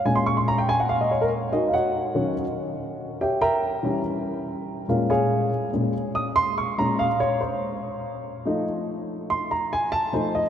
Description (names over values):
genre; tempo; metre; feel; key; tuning
jazz; 143 BPM; 4/4; straight; Bb minor; A4 = 440 Hz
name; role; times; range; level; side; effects
dark baby grand piano; solo; 0.0-10.5 s; Bb2 to Eb6; -22 LUFS; equal; none
room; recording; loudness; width
wet cathedral reverb, RT60 5.2 s; recorded in a church or concert hall; -22 LUFS; side -9 dB against mid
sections
0.0-10.5 A section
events
grand piano solo 0.0-10.5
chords
0.0 Bbm7; 1.5 Ebm7; 3.2 Edim7; 4.9 Bbm7; 8.2 F7